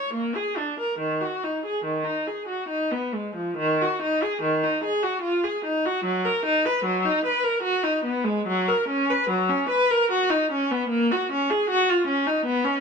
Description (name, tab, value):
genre	classical, baroque-style suite movement for unaccompanied viola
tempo	66-79 BPM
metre	3/4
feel	rubato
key	Eb minor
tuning	A4 = 439 Hz
part	rich viola	solo	0.0-12.8 s	Eb3 to Db5	-22 LUFS	equal	none
room	moderate stone room reverb, RT60 1.1 s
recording	dark, warm production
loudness	-22 LUFS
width	side -5 dB against mid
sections	0.0-3.6 A section; 3.6-12.8 A section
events	none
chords	none